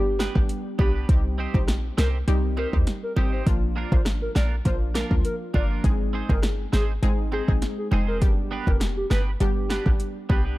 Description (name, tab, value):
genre	dancehall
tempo	101 BPM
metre	4/4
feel	straight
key	unclear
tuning	A4 = 440 Hz
part	hollow clarinet-like synth lead	melody	0.0-10.4 s	G4 to D5	-32 LUFS	equal	chorus, tape echo
part	analog pluck	accompaniment	0.0-10.5 s	F3 to Ab4	-31 LUFS	left 1 dB	chorus, sidechain pumping
part	short 808-style bass	bass	0.0-10.5 s	F1 to Eb2	-24 LUFS	equal	none
part	clean electric guitar	arpeggios	0.2-10.6 s	Bb3 to C5	-35 LUFS	right 5 dB	analog chorus
part	deep house drum kit	drums	0.2-10.4 s	hi-hat, kick drum, rim click, snare drum	-24 LUFS	equal	overdrive
part	bongos	percussion	0.2-10.4 s	none	-37 LUFS	right 3 dB	none
room	digital ambience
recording	dark, warm production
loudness	-21 LUFS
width	side -18 dB against mid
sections	0.0-10.6 A section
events	none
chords	0.0 G; 1.1 Cm; 3.5 Bb; 5.8 Ab; 8.2 G